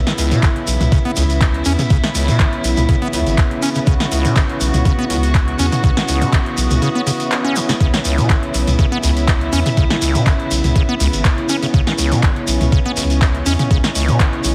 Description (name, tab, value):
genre	acid house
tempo	122 BPM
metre	4/4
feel	swing 54% on 16ths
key	C# minor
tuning	A4 = 440 Hz
part	warm chamber string section	sustained chords	0.0-14.5 s	C#3 to F#4	-25 LUFS	equal	sidechain pumping
part	round analog bass	bass	0.0-14.5 s	G#1 to E2	-21 LUFS	equal	tube saturation, sidechain pumping
part	deep dark ambient pad	texture	0.0-14.5 s	E4 to E6	-28 LUFS	equal	chorus, built-in reverb, sidechain pumping
part	acid bass, square	riff	0.1-14.3 s	C#2 to C#4	-23 LUFS	equal	tube saturation, cassette tape
part	electro analog drum machine	drums	0.1-14.5 s	handclaps, hi-hat, snare drum, toms	-24 LUFS	equal	none
part	shekere	percussion	0.2-14.5 s	none	-28 LUFS	equal	none
part	electronic kick drum	drums	0.4-14.3 s	none	-18 LUFS	equal	none
room	light reverb, digital ambience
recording	heavily compressed radio sound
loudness	-16 LUFS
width	mono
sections	0.0-14.5 A section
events	none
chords	0.0 C#m7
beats	0.43 0.92 1.41 | 1.90 2.40 2.89 3.38 | 3.87 4.36 4.85 5.35 | 5.84 6.33 6.82 7.31 | 7.80 8.30 8.79 9.28 | 9.77 10.26 10.76 11.25 | 11.74 12.23 12.72 13.21 | 13.71 14.20